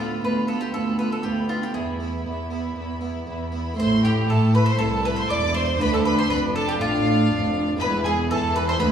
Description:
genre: classical, baroque-style concerto movement with solo episodes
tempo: 119 BPM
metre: 4/4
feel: straight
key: A minor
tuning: A4 = 440 Hz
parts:
  - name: bowl-back mandolin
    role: melody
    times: 0.0-8.9 s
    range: F4 to D5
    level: -28 LUFS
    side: left 1 dB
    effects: none
  - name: rich chamber violin section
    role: melody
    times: 0.0-8.9 s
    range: F5 to D6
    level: -30 LUFS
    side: left 1 dB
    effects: none
  - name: rich chamber violin section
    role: second line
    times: 0.0-8.9 s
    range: E4 to D5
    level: -30 LUFS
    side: left 1 dB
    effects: none
  - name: harpsichord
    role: accompaniment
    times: 0.0-8.9 s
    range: C2 to F4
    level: -29 LUFS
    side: right 1 dB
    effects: none
  - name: rich chamber viola section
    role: accompaniment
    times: 0.0-8.9 s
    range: B3 to E4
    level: -29 LUFS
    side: right 1 dB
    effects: none
  - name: rich chamber cello section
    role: bass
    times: 0.0-8.9 s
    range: C2 to A3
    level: -26 LUFS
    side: right 2 dB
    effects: none
  - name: rich chamber double bass section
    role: bass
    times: 3.8-8.9 s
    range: E1 to A2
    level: -25 LUFS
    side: equal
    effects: none
room: wet recital hall reverb, RT60 1.6 s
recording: recorded in a church or concert hall, small room ambience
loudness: -20 LUFS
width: side -8 dB against mid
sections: 0.0-3.8 A section; 3.8-8.9 B section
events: none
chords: 0.0 Bdim/D; 1.7 E; 3.8 Am; 4.8 Am/C; 5.8 Dm; 7.8 E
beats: 0.23 0.73 1.24 | 1.74 2.25 2.76 3.27 | 3.78 4.29 4.79 5.29 | 5.80 6.30 6.80 7.31 | 7.81 8.31 8.81

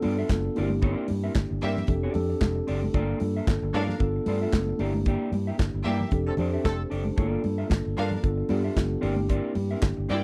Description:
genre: disco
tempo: 113 BPM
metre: 4/4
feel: swing 56% on 16ths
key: G dorian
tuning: A4 = 440 Hz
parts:
  - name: mellow electric guitar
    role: accompaniment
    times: 0.0-10.2 s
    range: Bb3 to E5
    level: -37 LUFS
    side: equal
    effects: none
  - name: mellow tine electric piano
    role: accompaniment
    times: 0.0-10.2 s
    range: A3 to C5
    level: -32 LUFS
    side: equal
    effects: none
  - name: fingered electric bass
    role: bass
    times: 0.0-10.2 s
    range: F1 to G2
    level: -31 LUFS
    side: equal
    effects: none
  - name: modern studio drum kit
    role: drums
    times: 0.0-10.2 s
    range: handclaps, hi-hat, kick drum, snare drum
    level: -27 LUFS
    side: equal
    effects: none
  - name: congas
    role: percussion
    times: 0.0-10.0 s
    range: none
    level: -37 LUFS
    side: equal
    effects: none
  - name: clear studio string section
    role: second line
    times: 1.6-10.2 s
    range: Bb3 to G5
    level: -33 LUFS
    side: equal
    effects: none
  - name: mellow horn section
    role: stabs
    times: 6.3-6.8 s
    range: D3 to A4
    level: -34 LUFS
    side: equal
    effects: none
room: small room ambience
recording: dry, close 1970s-style studio recording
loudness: -26 LUFS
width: mono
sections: 0.0-10.2 A section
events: band accent 5.1-7.2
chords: 0.0 G9; 0.6 C9/G; 1.9 F69; 2.9 Gm9; 4.0 G9; 4.8 Gm6; 6.1 F69; 7.2 Gm9; 8.2 G9; 9.0 C9/G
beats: 0.29 | 0.82 1.35 1.88 2.41 | 2.94 3.47 4.00 4.53 | 5.06 5.59 6.12 6.65 | 7.17 7.70 8.23 8.76 | 9.29 9.82

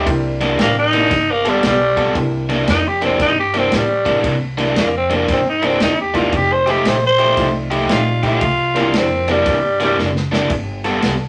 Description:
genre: electric blues shuffle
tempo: 115 BPM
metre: 4/4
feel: swing 65% on 8ths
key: C mixolydian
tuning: A4 = 442 Hz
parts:
  - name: overdriven electric guitar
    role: riff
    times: 0.0-11.1 s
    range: C3 to A4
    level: -21 LUFS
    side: equal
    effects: none
  - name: upright bass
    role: bass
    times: 0.0-11.3 s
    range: F1 to A2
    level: -26 LUFS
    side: equal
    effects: none
  - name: warm upright piano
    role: accompaniment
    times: 0.1-3.0, 6.1-9.4 s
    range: G3 to D5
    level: -26 LUFS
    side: equal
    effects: none
  - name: vintage drum kit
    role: drums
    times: 0.1-11.2 s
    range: kick drum, ride cymbal, snare drum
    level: -26 LUFS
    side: equal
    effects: none
  - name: growling tenor saxophone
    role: melody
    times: 0.6-10.0 s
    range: G3 to C5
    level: -18 LUFS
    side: equal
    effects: none
room: wet studio reverb, RT60 0.6 s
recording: none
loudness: -16 LUFS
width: mono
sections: 0.0-2.2 A section; 2.2-11.3 A section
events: tenor saxophone solo 0.0-11.3; drum fill 10.0-10.5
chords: 0.1 C9; 1.1 G9; 2.2 C9; 6.3 F9; 8.4 C9; 10.5 G9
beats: | 0.07 0.59 1.11 1.63 | 2.15 2.67 3.20 3.72 | 4.24 4.76 5.29 5.81 | 6.33 6.85 7.37 7.90 | 8.42 8.94 9.46 9.98 | 10.51 11.03

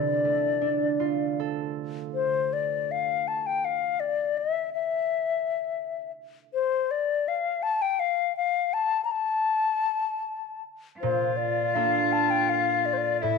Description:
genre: celtic folk, Celtic slow air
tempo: 75-87 BPM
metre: 3/4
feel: rubato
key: unclear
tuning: A4 = 440 Hz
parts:
  - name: hollow wooden flute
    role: melody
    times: 0.0-13.4 s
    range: C5 to Bb5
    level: -25 LUFS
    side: left 8 dB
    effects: none
  - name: concert harp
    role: accompaniment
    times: 0.0-3.6, 11.0-13.4 s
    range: A2 to A4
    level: -29 LUFS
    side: right 13 dB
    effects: none
  - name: warm cello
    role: second line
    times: 11.0-13.4 s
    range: E4 to F4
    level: -27 LUFS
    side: left 3 dB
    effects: none
room: moderate echo chamber reverb, RT60 1.4 s, studio reverb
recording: 1960s-style stereo with parts hard left and right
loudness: -24 LUFS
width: side -4 dB against mid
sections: 0.0-2.2 A section; 2.2-13.4 B section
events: none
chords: 0.0 Dm; 2.2 N.C.; 11.0 Bbmaj7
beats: 0.61 1.39 | 2.16 2.93 3.68 | 4.40 5.12 5.81 | 6.53 7.26 7.98 | 8.73 9.49 10.25 | 11.01 11.76 12.50 | 13.23

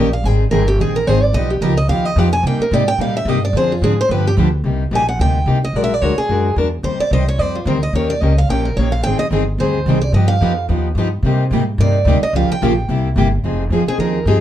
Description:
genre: acoustic string swing (jazz manouche)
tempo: 218 BPM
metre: 4/4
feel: swing 56% on 8ths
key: C minor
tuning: A4 = 440 Hz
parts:
  - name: picked steel-string acoustic guitar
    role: melody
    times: 0.0-14.4 s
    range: F4 to Ab5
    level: -20 LUFS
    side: right 2 dB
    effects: plate reverb
  - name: picked plugged-in steel-string acoustic guitar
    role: accompaniment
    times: 0.0-14.4 s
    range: C3 to C5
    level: -20 LUFS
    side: left 4 dB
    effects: none
  - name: picked steel-string acoustic guitar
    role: accompaniment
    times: 0.0-4.5, 9.1-14.4 s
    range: C3 to Ab4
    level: -22 LUFS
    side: right 6 dB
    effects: none
  - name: upright bass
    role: bass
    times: 0.0-14.4 s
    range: F1 to C3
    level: -17 LUFS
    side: equal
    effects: none
room: light reverb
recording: dark, warm production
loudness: -14 LUFS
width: side -11 dB against mid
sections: 0.0-4.6 A section; 4.6-13.4 A section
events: steel-string acoustic guitar solo 0.0-13.4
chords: 0.2 Abmaj7; 1.3 Gaug7; 2.4 Cm7; 3.5 Dm7b5; 4.1 G7; 4.6 Cm9; 5.7 Bbaug7; 6.8 Eb69; 7.9 Eb7; 9.0 Abmaj7; 10.1 Gaug7; 11.2 Cm9; 12.3 Gm7b5; 12.9 C7; 13.4 Fm11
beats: | 0.25 0.52 0.80 1.07 | 1.35 1.62 1.90 2.17 | 2.45 2.72 3.00 3.27 | 3.54 3.82 4.09 4.37 | 4.64 4.92 5.19 5.47 | 5.74 6.02 6.29 6.57 | 6.84 7.12 7.39 7.67 | 7.94 8.22 8.49 8.77 | 9.04 9.32 9.59 9.87 | 10.14 10.42 10.69 10.97 | 11.24 11.52 11.79 12.07 | 12.34 12.62 12.89 13.16 | 13.44 13.71 13.99 14.27

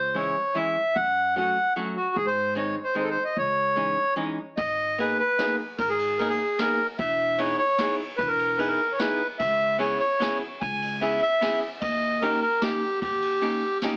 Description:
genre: musette waltz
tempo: 149 BPM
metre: 3/4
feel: straight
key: C# harmonic minor, G# harmonic minor from 4.6 s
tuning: A4 = 438 Hz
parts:
  - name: accordion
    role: melody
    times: 0.0-13.8 s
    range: F#4 to G#5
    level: -26 LUFS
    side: equal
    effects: slapback echo, plate reverb
  - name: upright bass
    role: bass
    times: 0.0-13.5 s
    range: E1 to G#2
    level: -38 LUFS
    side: equal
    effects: none
  - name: archtop guitar, miked and amplified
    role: accompaniment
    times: 0.1-14.0 s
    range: D#3 to G#4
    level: -32 LUFS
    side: equal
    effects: none
  - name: jazz brush drum kit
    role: drums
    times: 4.6-13.9 s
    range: kick drum, ride cymbal, snare drum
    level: -39 LUFS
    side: equal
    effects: none
room: wet studio reverb, RT60 0.6 s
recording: heavily compressed radio sound, multiband compression, AM radio sound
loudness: -25 LUFS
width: mono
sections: 0.0-4.6 A section; 4.6-14.0 B section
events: none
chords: 0.0 C#m; 1.0 F#m; 2.2 G#; 3.4 C#madd9; 4.6 G#madd9; 7.0 Emaj7; 9.4 C#m7; 11.8 D#7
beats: 0.16 0.56 | 0.96 1.36 1.76 | 2.16 2.56 2.96 | 3.36 3.77 4.17 | 4.58 4.98 5.38 | 5.79 6.19 6.59 | 6.99 7.38 7.79 | 8.19 8.59 8.99 | 9.40 9.80 10.21 | 10.61 11.01 11.41 | 11.82 12.22 12.62 | 13.02 13.42 13.83

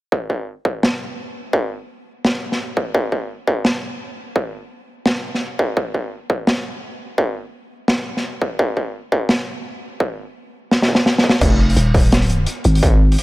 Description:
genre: half-time drum and bass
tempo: 170 BPM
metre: 4/4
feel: swing 60% on 16ths, half-time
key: F minor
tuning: A4 = 440 Hz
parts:
  - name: electronic kick drum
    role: drums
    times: 0.1-12.9 s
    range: none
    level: -18 LUFS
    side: equal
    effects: distortion, high-pass filter on kick, high-pass filter on room
  - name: crunchy breakbeat drum kit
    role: drums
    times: 0.8-13.2 s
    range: crash cymbal, hi-hat, rim click, snare drum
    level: -19 LUFS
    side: equal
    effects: none
  - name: growling 808-style bass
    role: bass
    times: 11.4-13.2 s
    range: Eb1 to Ab1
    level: -15 LUFS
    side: equal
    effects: tube saturation
room: little or no reverb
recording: none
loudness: -17 LUFS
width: side -18 dB against mid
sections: 0.1-11.4 A section; 11.4-13.2 B section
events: drum fill 10.7-11.4; drop 11.4-13.2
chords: none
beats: | 0.12 0.47 0.83 1.18 | 1.53 1.89 2.24 2.59 | 2.94 3.30 3.65 4.00 | 4.36 4.71 5.06 5.42 | 5.77 6.12 6.47 6.83 | 7.18 7.53 7.89 8.24 | 8.59 8.95 9.30 9.65 | 10.00 10.36 10.71 11.06 | 11.41 11.77 12.12 12.47 | 12.83 13.18

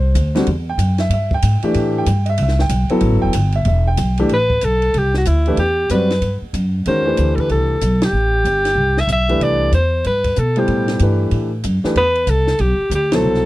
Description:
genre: modal jazz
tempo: 188 BPM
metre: 4/4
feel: swing 63% on 8ths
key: A dorian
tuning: A4 = 443 Hz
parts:
  - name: warm concert grand piano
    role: accompaniment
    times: 0.0-13.5 s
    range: B2 to G5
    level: -19 LUFS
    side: equal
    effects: none
  - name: upright bass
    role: bass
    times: 0.0-13.5 s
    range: E1 to B2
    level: -17 LUFS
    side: equal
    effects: none
  - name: compact cocktail drum kit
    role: drums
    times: 0.1-13.5 s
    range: hi-hat, kick drum, ride cymbal, snare drum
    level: -27 LUFS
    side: equal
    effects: none
  - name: clear alto saxophone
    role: melody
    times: 4.3-13.5 s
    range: E4 to E5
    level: -17 LUFS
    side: equal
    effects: none
room: little or no reverb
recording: dry, close 1970s-style studio recording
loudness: -14 LUFS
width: side -17 dB against mid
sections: 0.0-4.3 A section; 4.3-13.5 B section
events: band accent 8.0, 13.1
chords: 0.0 Am9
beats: 0.15 | 0.47 0.79 1.11 1.43 | 1.75 2.07 2.39 2.71 | 3.02 3.34 3.66 3.98 | 4.30 4.62 4.94 5.26 | 5.58 5.90 6.22 6.54 | 6.86 7.17 7.49 7.81 | 8.13 8.45 8.77 9.09 | 9.40 9.72 10.04 10.36 | 10.68 11.00 11.32 11.64 | 11.96 12.28 12.60 12.92 | 13.24

